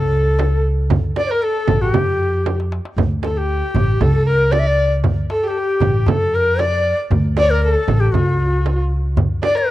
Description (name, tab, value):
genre	Arabic maqam ensemble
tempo	116 BPM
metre	4/4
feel	straight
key	D maqam suznak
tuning	A4 = 438 Hz
part	breathy bright ney	melody	0.0-9.7 s	F#4-49c to E5	-19 LUFS	left 3 dB	none
part	dark fiddle	second line	0.0-9.7 s	F4+36c to D5	-24 LUFS	right 4 dB	none
part	upright bass	bass	0.0-9.4 s	A1 to F#2-50c	-18 LUFS	equal	none
part	darbuka	percussion	0.4-9.7 s	none	-22 LUFS	left 1 dB	none
part	frame drum	percussion	0.4-9.6 s	none	-22 LUFS	right 7 dB	none
room	small room ambience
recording	dry, close 1970s-style studio recording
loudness	-15 LUFS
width	side -15 dB against mid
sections	0.0-9.7 A section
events	drum fill 2.5-3.0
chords	none